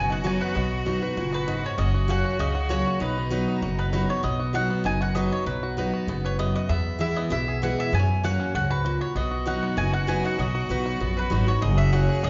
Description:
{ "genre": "bluegrass", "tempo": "195 BPM", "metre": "4/4", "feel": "straight", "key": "B major", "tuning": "A4 = 443 Hz", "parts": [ { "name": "bluegrass banjo", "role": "melody", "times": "0.0-12.3 s", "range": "F#3 to B4", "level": "-36 LUFS", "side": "equal", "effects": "none" }, { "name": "mandolin", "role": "melody", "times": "0.0-12.3 s", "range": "B4 to G#5", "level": "-32 LUFS", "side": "equal", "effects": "none" }, { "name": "bright fiddle", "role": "second line", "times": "0.0-4.1, 9.2-12.3 s", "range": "D#4 to G#4", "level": "-36 LUFS", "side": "equal", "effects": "none" }, { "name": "picked steel-string acoustic guitar", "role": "accompaniment", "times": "0.0-12.3 s", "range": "E2 to F#4", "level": "-30 LUFS", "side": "equal", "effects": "none" }, { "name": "upright bass", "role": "bass", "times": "0.0-12.3 s", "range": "F#1 to F#2", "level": "-29 LUFS", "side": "equal", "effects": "none" } ], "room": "wet large studio reverb, RT60 1.3 s", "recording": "band playing live in one room, nothing above 7.5 kHz", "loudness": "-25 LUFS", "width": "mono", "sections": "0.0-4.2 A section; 4.2-12.3 A section", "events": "none", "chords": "0.0 B; 1.8 F#; 3.0 B; 6.7 E; 7.9 F#; 9.2 B; 11.6 F#", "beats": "0.25 | 0.55 0.86 1.17 1.47 | 1.78 2.09 2.39 2.70 | 3.01 3.31 3.62 3.93 | 4.24 4.54 4.85 5.16 | 5.46 5.77 6.08 6.39 | 6.70 7.00 7.31 7.62 | 7.93 8.24 8.54 8.85 | 9.16 9.47 9.78 10.08 | 10.39 10.70 11.01 11.31 | 11.62 11.93 12.24" }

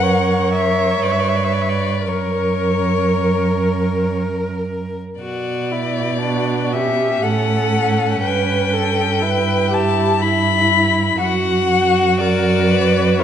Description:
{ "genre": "classical, slow romantic movement for string quartet", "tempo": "59 BPM", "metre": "3/4", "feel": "uneven beats, rubato", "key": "unclear", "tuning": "A4 = 440 Hz", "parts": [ { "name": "rich violin", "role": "melody", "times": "0.0-13.2 s", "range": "C#5 to B5", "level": "-20 LUFS", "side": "left 7 dB", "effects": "none" }, { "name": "rich violin", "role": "second line", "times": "0.0-13.2 s", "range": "C#4 to B4", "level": "-23 LUFS", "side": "left 1 dB", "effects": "none" }, { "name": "warm viola", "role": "accompaniment", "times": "0.0-13.2 s", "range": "E4 to C#5", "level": "-22 LUFS", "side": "right 3 dB", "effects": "none" }, { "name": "dark cello", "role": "bass", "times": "0.0-13.2 s", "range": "F#2 to B2", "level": "-20 LUFS", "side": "right 3 dB", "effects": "none" } ], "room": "wet recital hall reverb, RT60 1.8 s", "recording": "nothing above 10.7 kHz", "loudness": "-15 LUFS", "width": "side -9 dB against mid", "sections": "0.0-13.2 A section", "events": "none", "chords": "0.0 F#; 1.0 G; 2.1 F#; 5.2 Bm; 7.2 F#m/A; 8.2 Em/G; 10.2 G6; 11.2 F#aug", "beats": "0.05 1.04 | 2.07 3.12 4.16 | 5.21 6.24 7.23 | 8.23 9.22 10.21 | 11.20 12.20 13.19" }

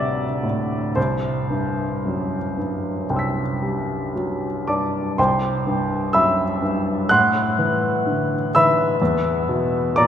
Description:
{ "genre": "classical, impressionist solo piano", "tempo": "55-64 BPM", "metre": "4/4", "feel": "rubato", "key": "C lydian", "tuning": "A4 = 440 Hz", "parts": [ { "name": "clear grand piano", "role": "solo", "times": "0.0-10.1 s", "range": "C2 to B6", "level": "-18 LUFS", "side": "equal", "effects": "none" } ], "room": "wet cathedral reverb, RT60 6.9 s", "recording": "recorded in a church or concert hall", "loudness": "-19 LUFS", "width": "side -9 dB against mid", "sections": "0.0-5.2 A section; 5.2-10.1 A section", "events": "none", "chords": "0.0 D9; 1.0 Cmaj7; 5.2 C; 7.1 Amadd9; 9.0 E7(no3)", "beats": "| 0.96 2.05 3.10 4.14 | 5.18 6.14 7.09 8.05 | 9.00 9.96" }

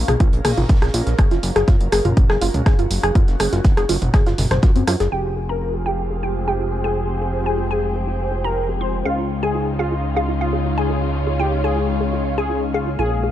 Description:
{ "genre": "melodic techno", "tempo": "122 BPM", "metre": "4/4", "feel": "straight", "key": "F minor", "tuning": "A4 = 440 Hz", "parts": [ { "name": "fat analog bass", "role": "bass", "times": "0.0-13.3 s", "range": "F1 to Gb2", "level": "-22 LUFS", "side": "equal", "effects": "sidechain pumping" }, { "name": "airy breathy pad", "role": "texture", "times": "0.0-13.3 s", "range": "Ab3 to G5", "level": "-28 LUFS", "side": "left 1 dB", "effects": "chorus, phaser, sidechain pumping" }, { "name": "warbly dusty pluck", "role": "arpeggios", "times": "0.1-13.3 s", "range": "C4 to C5", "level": "-24 LUFS", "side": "equal", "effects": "chorus, sidechain pumping, dub echo" }, { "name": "modern studio drum kit", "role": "drums", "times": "0.1-5.1 s", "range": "hi-hat, shaker, snare drum", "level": "-40 LUFS", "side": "right 2 dB", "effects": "high-pass filter on hats, high-pass filter on snare, high-pass filter on perc, high-pass filter on room" }, { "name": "punchy analog drum machine", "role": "drums", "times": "0.1-13.3 s", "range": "hi-hat, rim click, toms", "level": "-24 LUFS", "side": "right 1 dB", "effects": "sidechain pumping on hats, low-pass filter on hats, low-pass filter on snare, sidechain pumping on toms, low-pass filter on toms" }, { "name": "electronic kick drum", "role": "drums", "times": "0.2-4.7 s", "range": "none", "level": "-15 LUFS", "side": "equal", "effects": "none" }, { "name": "analog synth brass", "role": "melody", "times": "5.1-13.2 s", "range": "F4 to C5", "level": "-26 LUFS", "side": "left 1 dB", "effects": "chorus, vintage 12-bit sampler grit, digital delay" }, { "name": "glassy wavetable pluck", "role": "second line", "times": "5.1-13.2 s", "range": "F5 to C6", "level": "-29 LUFS", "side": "equal", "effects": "chorus, sidechain pumping, dub echo" }, { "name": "dark studio string section", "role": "sustained chords", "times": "5.1-13.3 s", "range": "Db3 to Ab4", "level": "-28 LUFS", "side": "left 1 dB", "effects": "sidechain pumping, low-pass filter" } ], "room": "studio reverb", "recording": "dark, warm production", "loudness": "-17 LUFS", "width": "side -12 dB against mid", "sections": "0.0-5.1 A section; 5.1-13.3 B section", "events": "filter sweep on analog polysynth 5.1-13.3; filter sweep on synth pluck 5.1-13.3; filter sweep on string section 5.1-13.3", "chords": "0.0 Bbm7; 1.2 Gbmaj7; 5.1 Fmadd9; 9.1 Dbadd9", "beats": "0.20 0.69 | 1.19 1.68 2.17 2.66 | 3.15 3.65 4.14 4.63 | 5.12 5.61 6.10 6.60 | 7.09 7.58 8.07 8.56 | 9.05 9.55 10.04 10.53 | 11.02 11.51 12.01 12.50 | 12.99" }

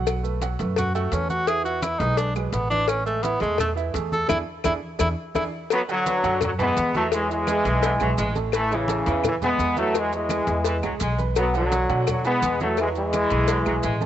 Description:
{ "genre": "latin, salsa", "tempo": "170 BPM", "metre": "4/4", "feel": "straight", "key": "unclear", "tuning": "A4 = 440 Hz", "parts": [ { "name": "warm baby grand piano", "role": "accompaniment", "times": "0.0-14.1 s", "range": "E3 to F#6", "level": "-31 LUFS", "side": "right 10 dB", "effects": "cassette tape" }, { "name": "upright bass", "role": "bass", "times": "0.0-14.1 s", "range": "A1 to B2", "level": "-27 LUFS", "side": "equal", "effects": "none" }, { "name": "claves", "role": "percussion", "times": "0.1-13.8 s", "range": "none", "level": "-40 LUFS", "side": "left 11 dB", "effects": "none" }, { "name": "congas", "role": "percussion", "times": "0.1-14.1 s", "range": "none", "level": "-33 LUFS", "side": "equal", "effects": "none" }, { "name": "cowbell", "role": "percussion", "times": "0.1-14.0 s", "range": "none", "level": "-29 LUFS", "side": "left 9 dB", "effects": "none" }, { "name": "maracas", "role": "percussion", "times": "0.1-14.1 s", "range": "none", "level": "-39 LUFS", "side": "right 12 dB", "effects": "none" }, { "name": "breathy tenor saxophone", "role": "melody", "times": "0.8-5.4 s", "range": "F#3 to A4", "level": "-25 LUFS", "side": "equal", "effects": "cassette tape" }, { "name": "bright trombone section", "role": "melody", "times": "5.7-14.0 s", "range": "C#3 to B3", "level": "-22 LUFS", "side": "left 1 dB", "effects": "cassette tape" }, { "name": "bright saxophone section", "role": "second line", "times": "5.7-14.0 s", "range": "C#3 to G#3", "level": "-31 LUFS", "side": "equal", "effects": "cassette tape" } ], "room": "light reverb, small room ambience", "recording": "home recording on cassette, nothing above 8.0 kHz", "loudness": "-21 LUFS", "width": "side -11 dB against mid", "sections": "0.0-5.7 A section; 5.7-14.1 B section", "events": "tenor saxophone solo 0.0-5.7; band accent 4.3-5.7", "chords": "0.1 B5; 1.5 E; 2.9 A5; 4.3 E7; 5.7 Bm7; 7.1 E; 8.5 Amaj7; 9.9 E; 11.4 Bm7; 12.8 E", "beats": "| 0.07 0.42 0.77 1.12 | 1.48 1.83 2.18 2.54 | 2.89 3.24 3.59 3.95 | 4.30 4.65 5.00 5.36 | 5.71 6.06 6.42 6.77 | 7.12 7.47 7.83 8.18 | 8.53 8.89 9.24 9.59 | 9.95 10.30 10.65 11.01 | 11.36 11.71 12.06 12.42 | 12.77 13.12 13.48 13.83" }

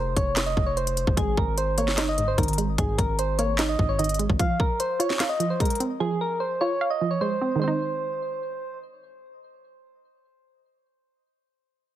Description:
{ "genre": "hip hop, trap", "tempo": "149 BPM", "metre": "4/4", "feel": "half-time", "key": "Ab major", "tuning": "A4 = 439 Hz", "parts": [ { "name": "soft electric-piano-like synth keys", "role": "melody", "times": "0.0-8.8 s", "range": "Ab4 to F5", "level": "-27 LUFS", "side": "right 1 dB", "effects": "chorus, low-pass filter, ping-pong delay" }, { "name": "hard-hitting 808-style bass", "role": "bass", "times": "0.0-4.4 s", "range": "F1 to Ab1", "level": "-28 LUFS", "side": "equal", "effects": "none" }, { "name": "trap drum kit", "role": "drums", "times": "0.2-5.9 s", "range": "handclaps, hi-hat, kick drum, snare drum", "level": "-26 LUFS", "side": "left 1 dB", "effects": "none" }, { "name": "hollow square pluck", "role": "accompaniment", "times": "1.2-11.3 s", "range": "Ab2 to F5", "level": "-28 LUFS", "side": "right 3 dB", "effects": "chorus, low-pass filter" } ], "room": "light reverb", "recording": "heavily compressed radio sound, multiband compression", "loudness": "-22 LUFS", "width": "side -12 dB against mid", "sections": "0.0-7.6 A section; 7.6-10.8 B section", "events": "none", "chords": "0.0 F5; 1.2 Absus2; 4.4 Fm; 7.6 Ab", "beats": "0.37 0.77 | 1.17 1.58 1.98 2.38 | 2.78 3.19 3.59 3.99 | 4.39 4.80 5.20 5.60 | 6.00 6.41 6.81 7.21 | 7.62 8.02 8.42 8.82 | 9.23 9.63 10.03 10.44" }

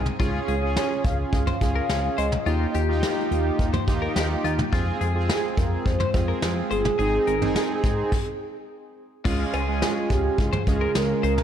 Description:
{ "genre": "synth-pop", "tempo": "106 BPM", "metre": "4/4", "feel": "straight", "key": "unclear", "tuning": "A4 = 439 Hz", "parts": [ { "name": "analog synth brass", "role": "accompaniment", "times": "0.0-11.4 s", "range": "Ab3 to Ab4", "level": "-28 LUFS", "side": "right 4 dB", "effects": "chorus" }, { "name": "ensemble organ-string", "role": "sustained chords", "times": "0.0-11.4 s", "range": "Db3 to Ab4", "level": "-32 LUFS", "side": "right 1 dB", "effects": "phaser, ensemble chorus" }, { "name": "chorused synth bass", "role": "bass", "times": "0.0-11.4 s", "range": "G1 to F2", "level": "-26 LUFS", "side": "equal", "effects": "none" }, { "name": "soft brush drum kit", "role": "drums", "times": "0.1-11.4 s", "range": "cowbell, crash cymbal, hi-hat, kick drum, snare drum, toms", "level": "-26 LUFS", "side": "equal", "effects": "none" }, { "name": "twelve-string electric guitar", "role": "second line", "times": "0.2-11.3 s", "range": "F4 to C5", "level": "-32 LUFS", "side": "left 7 dB", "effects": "wide subtle chorus, analog delay" }, { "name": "mellow horn-like synth lead", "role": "melody", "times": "0.8-11.4 s", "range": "F4 to F5", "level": "-28 LUFS", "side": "equal", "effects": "chorus" } ], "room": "moderate concert hall reverb, RT60 2.1 s", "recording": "dark, warm production", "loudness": "-21 LUFS", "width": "side -9 dB against mid", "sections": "0.0-9.3 A section; 9.3-11.4 A section", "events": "stop 8.1-9.3", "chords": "0.2 Db; 2.5 Ebadd9; 4.7 Fm; 7.0 Ab; 9.3 Db", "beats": "| 0.20 0.76 1.33 1.90 | 2.46 3.03 3.59 4.16 | 4.73 5.29 5.86 6.42 | 6.99 7.56 8.12 8.69 | 9.25 9.82 10.39 10.95" }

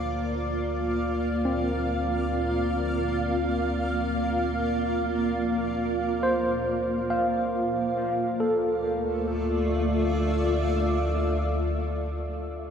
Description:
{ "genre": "ambient", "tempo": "free time", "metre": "none", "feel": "none", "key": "D minor", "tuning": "A4 = 440 Hz", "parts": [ { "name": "granular cloud pad", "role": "sustained chords", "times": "0.0-11.8 s", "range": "A3 to F5", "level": "-26 LUFS", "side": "equal", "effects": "built-in reverb" }, { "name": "overdriven tine electric piano", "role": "arpeggios", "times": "0.0-12.7 s", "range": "C4 to F5", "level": "-30 LUFS", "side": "equal", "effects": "fast tremolo, tape echo" }, { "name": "deep rumbling drone", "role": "bass", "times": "0.0-11.7 s", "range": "D2", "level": "-31 LUFS", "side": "equal", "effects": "built-in reverb, tube saturation" } ], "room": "wet huge ambient reverb, RT60 8.0 s", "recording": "none", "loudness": "-24 LUFS", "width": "side -7 dB against mid", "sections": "0.0-8.4 A section; 8.4-11.0 B section", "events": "none", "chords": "0.0 Bb/D; 8.4 Dmadd9", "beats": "free time" }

